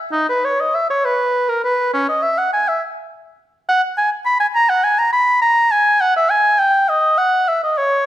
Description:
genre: classical, baroque-style fantasia for unaccompanied oboe.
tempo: 68 BPM (dotted quarters).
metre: 6/8.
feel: rubato.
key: G# minor.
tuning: A4 = 439 Hz.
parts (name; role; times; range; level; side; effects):
warm oboe; solo; 0.1-8.1 s; C#4 to B5; -14 LUFS; equal; none.
room: moderate recital hall reverb, RT60 1.2 s.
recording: none.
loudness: -14 LUFS.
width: side -13 dB against mid.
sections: 0.0-8.1 A section.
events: none.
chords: none.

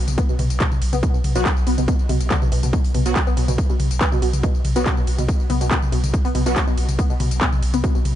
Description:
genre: driving peak-time techno.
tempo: 141 BPM.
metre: 4/4.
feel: straight.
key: unclear.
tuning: A4 = 440 Hz.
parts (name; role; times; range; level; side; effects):
warm sub bass; bass; 0.0-8.2 s; B1; -22 LUFS; equal; tube saturation, sidechain pumping, low-pass filter.
techno drum kit; drums; 0.1-8.1 s; handclaps, hi-hat, ride cymbal, tambourine, toms; -24 LUFS; left 1 dB; overdrive, sidechain pumping on hats, studio reverb, sidechain pumping on perc, sidechain pumping on toms, sidechain pumping on cymbals.
warbly dusty pluck; riff; 0.2-8.0 s; B2 to B3; -25 LUFS; left 1 dB; lush chorus, sidechain pumping, digital delay.
electronic kick drum; drums; 0.2-7.9 s; none; -20 LUFS; equal; overdrive, studio reverb.
rave stab; stabs; 1.4-6.6 s; F#3 to F#4; -29 LUFS; right 2 dB; chorus, built-in reverb, sidechain pumping, ping-pong delay.
room: little or no reverb.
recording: nothing above 10.4 kHz.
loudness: -17 LUFS.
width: side -12 dB against mid.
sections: 0.0-8.2 A section.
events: none.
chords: 0.0 B5.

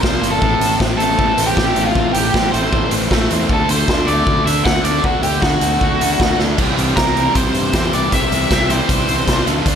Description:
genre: indie rock.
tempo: 156 BPM.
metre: 4/4.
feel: straight.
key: unclear.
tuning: A4 = 439 Hz.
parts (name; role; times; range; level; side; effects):
octave-fuzz lead guitar; melody; 0.0-9.4 s; F4 to F#5; -19 LUFS; equal; distortion, tape echo.
fuzz guitar; riff; 0.0-9.8 s; A2 to G4; -19 LUFS; equal; distortion.
fuzz fingered electric bass; bass; 0.0-9.8 s; G1 to G2; -22 LUFS; equal; overdrive.
raw garage drum kit; drums; 0.0-9.8 s; crash cymbal, hi-hat, kick drum, snare drum; -18 LUFS; equal; none.
room: light reverb.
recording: none.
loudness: -13 LUFS.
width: side -8 dB against mid.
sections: 0.0-6.6 A section; 6.6-9.8 B section.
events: drum fill 6.4.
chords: 0.4 Am7; 3.5 D; 6.6 C.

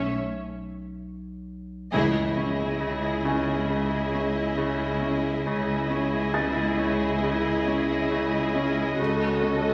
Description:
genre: cinematic, suspense film score.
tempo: 68 BPM.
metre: 4/4.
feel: straight.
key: C# minor.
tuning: A4 = 440 Hz.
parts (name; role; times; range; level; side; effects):
dark chamber violin section; melody; 0.0-9.7 s; D#5 to E5; -35 LUFS; equal; none.
dark chamber violin section; second line; 0.0-9.7 s; G#4 to C#5; -34 LUFS; equal; none.
rich studio viola section; accompaniment; 0.0-9.7 s; C#4 to F#4; -32 LUFS; equal; none.
warm studio cello section; bass; 0.0-9.7 s; C#2 to A3; -35 LUFS; equal; none.
warm studio double bass section; bass; 0.0-9.7 s; C#2; -38 LUFS; equal; none.
saturated sub bass; drone; 0.0-9.7 s; B1 to C#2; -39 LUFS; equal; none.
felt-muted upright piano; texture; 0.0-9.0 s; G#5 to A6; -39 LUFS; equal; none.
Celtic harp; riff; 1.9-9.7 s; C#3 to C#4; -31 LUFS; equal; none.
impact; sound effects; 1.9-5.5 s; none; -38 LUFS; equal; none.
room: wet scoring stage reverb, RT60 1.6 s.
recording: none.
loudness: -26 LUFS.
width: mono.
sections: 0.0-1.9 A section; 1.9-9.7 B section.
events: break 0.2-1.9; band accent 1.9-2.8; impact 1.9-5.5.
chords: 0.0 N.C.; 1.9 C#madd9; 9.0 F#m/C#.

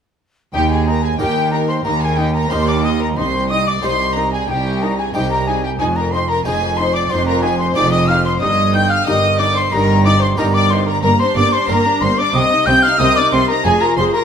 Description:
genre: classical, baroque-style concerto movement with solo episodes.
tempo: 92 BPM.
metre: 4/4.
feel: straight.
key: Eb major.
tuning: A4 = 440 Hz.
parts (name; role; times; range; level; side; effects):
concert flute; melody; 0.5-14.2 s; G5 to G6; -19 LUFS; left 1 dB; none.
rich chamber violin section; melody; 0.5-14.2 s; G5 to G6; -22 LUFS; left 2 dB; none.
warm chamber violin section; second line; 0.5-14.2 s; G4 to G5; -22 LUFS; left 2 dB; none.
dark chamber viola section; accompaniment; 0.5-14.2 s; Bb3 to Ab4; -24 LUFS; left 1 dB; none.
harpsichord; accompaniment; 0.5-14.2 s; C2 to C5; -24 LUFS; equal; none.
rich chamber cello section; bass; 0.5-14.1 s; C2 to C3; -21 LUFS; right 2 dB; none.
rich chamber double bass section; bass; 0.5-14.1 s; F1 to Eb2; -21 LUFS; right 4 dB; none.
room: moderate recital hall reverb, RT60 1.5 s.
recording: none.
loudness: -13 LUFS.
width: side -7 dB against mid.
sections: 0.5-14.2 A section.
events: none.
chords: 0.5 Eb; 3.2 Cm; 5.8 Fm7; 8.4 Eb/G; 11.0 Gm; 12.3 Cm7; 13.7 Fm.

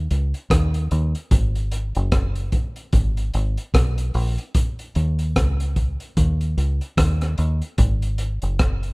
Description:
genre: roots reggae.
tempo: 74 BPM.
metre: 4/4.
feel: swing 59% on 16ths.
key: unclear.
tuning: A4 = 440 Hz.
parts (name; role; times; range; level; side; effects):
deep dub fingered electric bass; bass; 0.0-8.9 s; Gb1 to Eb2; -20 LUFS; equal; none.
crunchy breakbeat drum kit; drums; 0.1-8.9 s; hi-hat, kick drum, rim click; -21 LUFS; equal; none.
room: little or no reverb.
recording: rough home demo mix.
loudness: -19 LUFS.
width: side -31 dB against mid.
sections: 0.0-8.9 A section.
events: none.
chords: none.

